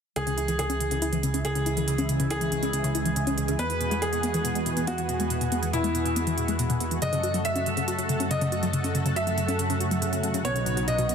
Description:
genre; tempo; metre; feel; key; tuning
uplifting trance; 140 BPM; 4/4; straight; C# minor; A4 = 439 Hz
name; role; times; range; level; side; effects
clear grand piano; second line; 0.2-11.1 s; E4 to E5; -29 LUFS; equal; dub echo
analog string pad; sustained chords; 0.2-11.1 s; C#3 to A4; -30 LUFS; right 1 dB; ensemble chorus
wide unison pluck; arpeggios; 0.2-11.1 s; B2 to F#4; -29 LUFS; left 2 dB; dub echo
fat analog bass; bass; 0.2-11.1 s; B1 to F#2; -32 LUFS; equal; none
electronic hi-hat; drums; 0.2-11.1 s; none; -34 LUFS; right 3 dB; overdrive
room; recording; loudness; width
moderate lush hall reverb, RT60 1.6 s, digital ambience; dense, heavily limited modern master; -24 LUFS; side -7 dB against mid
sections
0.2-11.1 A section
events
filter sweep on synth arpeggio sound 0.2-11.1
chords
0.2 C#m; 3.6 Eadd9; 7.0 F#m; 10.4 Badd9

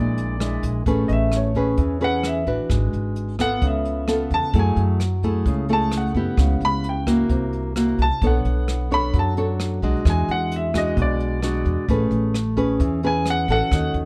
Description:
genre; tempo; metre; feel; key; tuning
bossa nova; 131 BPM; 4/4; straight; A major; A4 = 441 Hz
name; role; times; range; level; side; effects
warm grand piano; melody; 0.0-13.9 s; C#5 to B5; -28 LUFS; equal; none
nylon-string guitar; accompaniment; 0.0-14.1 s; Bb2 to C#5; -25 LUFS; equal; none
upright bass; bass; 0.0-14.1 s; G#1 to F#2; -26 LUFS; equal; none
jazz brush drum kit; drums; 0.2-14.1 s; hi-hat, kick drum, rim click; -28 LUFS; equal; none
room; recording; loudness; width
little or no reverb; dark, warm production; -21 LUFS; mono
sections
0.9-14.1 A section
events
grand piano solo 0.9-14.1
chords
0.0 Bb7#11; 0.9 Amaj9; 2.7 G#m7b5; 3.6 C#7alt; 4.5 F#m9; 6.4 C#m7b5; 7.3 C7#11; 8.2 Bm9; 10.1 E9; 11.9 Amaj9

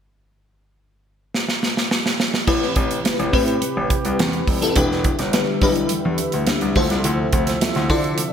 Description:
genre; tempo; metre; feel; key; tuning
polished 1980s jazz-funk pop; 105 BPM; 4/4; straight; A minor; A4 = 444 Hz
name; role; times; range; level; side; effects
modern studio drum kit; drums; 1.3-8.3 s; crash cymbal, hi-hat, kick drum, snare drum; -21 LUFS; right 1 dB; gated reverb
bell-like FM electric piano; accompaniment; 2.5-8.3 s; C4 to D5; -22 LUFS; left 2 dB; ensemble chorus
warm analog pad; sustained chords; 2.5-8.3 s; C3 to E5; -27 LUFS; right 1 dB; chorus
warm grand piano; bass; 2.5-8.2 s; E1 to D3; -23 LUFS; equal; none
congas; percussion; 2.5-8.3 s; none; -35 LUFS; right 6 dB; none
room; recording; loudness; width
light reverb, small room ambience; bright 1980s-style digital production, faint mains hum; -17 LUFS; side -8 dB against mid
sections
0.2-2.5 A section; 2.5-8.3 B section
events
drum fill 1.3-2.5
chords
0.2 N.C.; 2.5 Am9; 4.8 Em7; 6.8 Dm9

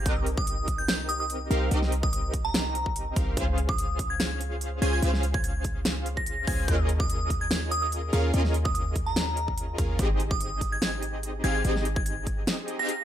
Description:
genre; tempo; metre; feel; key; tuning
future bass; 145 BPM; 4/4; swing 53% on 16ths, half-time; Ab major; A4 = 439 Hz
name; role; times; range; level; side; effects
glassy synth bell; melody; 0.0-13.0 s; Bb5 to Bb6; -32 LUFS; right 1 dB; chorus, phaser, sidechain pumping, ping-pong delay
supersaw stab; riff; 0.0-13.0 s; C4 to Ab5; -32 LUFS; equal; sidechain pumping
warm 808-style bass; bass; 0.0-12.5 s; Ab1 to Eb2; -29 LUFS; equal; sidechain pumping
big-room dance drum kit; drums; 0.1-13.0 s; hi-hat, snare drum; -30 LUFS; equal; none
electronic kick drum; drums; 0.1-12.4 s; none; -29 LUFS; equal; none
room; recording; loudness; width
digital ambience; none; -25 LUFS; side -11 dB against mid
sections
0.0-13.0 A section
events
none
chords
0.1 Cm7; 3.4 Dbmaj7; 6.7 Eb9sus4; 10.0 Abmaj7

